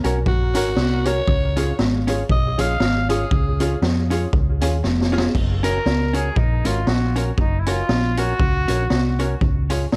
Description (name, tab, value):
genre	ska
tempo	118 BPM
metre	4/4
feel	swing 57% on 8ths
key	F# major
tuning	A4 = 441 Hz
part	vintage hollow-body jazz guitar	accompaniment	0.0-10.0 s	C#4 to C#5	-29 LUFS	equal	none
part	warm upright piano	stabs	0.0-5.3 s	C#4 to A#4	-32 LUFS	equal	tape echo
part	hollow-body short-scale fingered electric bass	bass	0.0-10.0 s	E#1 to E#2	-24 LUFS	equal	none
part	raw garage drum kit	drums	0.0-10.0 s	crash cymbal, hi-hat, kick drum, snare drum	-24 LUFS	equal	none
part	raspy alto saxophone	melody	0.3-3.8 s	F#4 to E#5	-28 LUFS	equal	tape echo
part	warm trumpet	melody	5.6-9.4 s	D#4 to A#4	-28 LUFS	equal	tape echo
room	light reverb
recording	none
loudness	-20 LUFS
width	mono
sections	0.0-5.3 A section; 5.3-10.0 A section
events	alto saxophone solo 0.0-5.3; drum fill 4.8-5.3; trumpet solo 5.3-10.0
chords	0.0 F#; 1.3 C#; 5.3 F#; 9.4 C#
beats	0.26 0.77 | 1.28 1.79 2.29 2.80 | 3.31 3.82 4.33 4.84 | 5.34 5.85 6.36 6.87 | 7.38 7.89 8.40 8.91 | 9.42 9.93